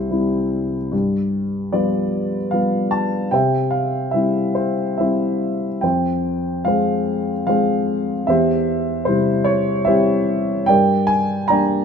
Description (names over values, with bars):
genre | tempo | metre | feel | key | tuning
classical, lyrical solo piano | 74 BPM | 3/4 | rubato | unclear | A4 = 443 Hz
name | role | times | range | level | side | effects
dark grand piano | solo | 0.0-11.8 s | C2 to Bb5 | -17 LUFS | equal | none
room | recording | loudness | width
light reverb | minimal, uncompressed stereo recording | -17 LUFS | side -6 dB against mid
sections
0.0-11.8 A section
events
none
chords
0.0 C; 0.9 G7; 3.3 C; 5.8 Fm; 8.3 C/E; 10.7 Gm